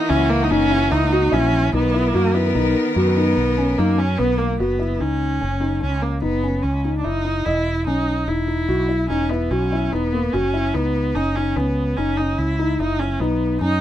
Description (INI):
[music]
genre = contemporary instrumental, chamber music in an uneven meter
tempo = 146 BPM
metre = 7/4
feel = straight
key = F# mixolydian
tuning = A4 = 440 Hz
[part]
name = clear viola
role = second line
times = 0.0-13.8 s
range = A#3 to E4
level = -22 LUFS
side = right 2 dB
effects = none
[part]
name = clear symphonic string section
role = sustained chords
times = 0.0-4.6 s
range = D#3 to A#4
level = -27 LUFS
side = left 2 dB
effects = none
[part]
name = felt-muted upright piano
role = arpeggios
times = 0.0-13.8 s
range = A#3 to D#5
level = -22 LUFS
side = left 2 dB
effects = none
[part]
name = mellow fretless electric bass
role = bass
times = 0.1-13.8 s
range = E1 to F#2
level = -22 LUFS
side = equal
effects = none
[sound]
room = little or no reverb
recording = close, detailed microphones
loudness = -17 LUFS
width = side -12 dB against mid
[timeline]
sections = 0.0-4.6 A section; 4.6-13.8 B section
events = none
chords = 0.0 F#7; 1.7 Bmaj7; 4.6 F#7sus4; 7.5 E5; 10.3 F#7sus4; 13.2 B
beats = 0.11 0.52 0.92 1.33 | 1.74 2.15 2.56 2.97 3.37 3.78 4.19 | 4.60 5.01 5.42 5.83 6.24 6.65 7.06 | 7.46 7.88 8.28 8.69 9.10 9.51 9.92 | 10.33 10.74 11.15 11.56 11.97 12.38 12.79 | 13.20 13.61